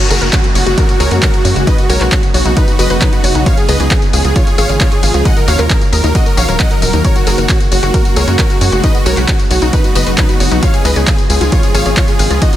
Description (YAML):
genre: uplifting trance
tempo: 134 BPM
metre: 4/4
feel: straight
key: F# major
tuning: A4 = 439 Hz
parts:
  - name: supersaw chords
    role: melody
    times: 0.0-12.6 s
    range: D#4 to F#5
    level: -17 LUFS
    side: right 1 dB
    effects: sidechain pumping, tape echo
  - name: downlifter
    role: sound effects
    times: 0.0-3.5 s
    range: none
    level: -24 LUFS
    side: right 2 dB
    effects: none
  - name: wide unison pluck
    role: arpeggios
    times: 0.1-12.4 s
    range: D#4 to E#5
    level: -22 LUFS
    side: left 3 dB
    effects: sidechain pumping, tape echo
  - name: tight sequencer bass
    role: bass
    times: 0.1-12.4 s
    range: D#1 to F#2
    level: -14 LUFS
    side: equal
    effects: tube saturation, sidechain pumping
  - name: punchy analog drum machine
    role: drums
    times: 0.1-12.6 s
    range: handclaps, hi-hat, ride cymbal, tambourine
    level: -18 LUFS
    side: left 1 dB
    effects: sidechain pumping on hats, sidechain pumping on perc, sidechain pumping on cymbals
  - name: electronic kick drum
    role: drums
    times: 0.3-12.5 s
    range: none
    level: -13 LUFS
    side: equal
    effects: none
room: little or no reverb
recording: none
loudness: -9 LUFS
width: side -12 dB against mid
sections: 0.0-12.6 A section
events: none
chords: 0.0 F#add9; 1.7 Badd9; 3.5 C#; 5.3 D#m; 7.0 F#add9; 8.8 Badd9; 10.6 C#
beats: 0.33 0.78 1.22 | 1.67 2.12 2.57 3.02 | 3.46 3.91 4.36 4.81 | 5.25 5.70 6.15 6.60 | 7.04 7.49 7.94 8.39 | 8.84 9.28 9.73 10.18 | 10.63 11.07 11.52 11.97 | 12.42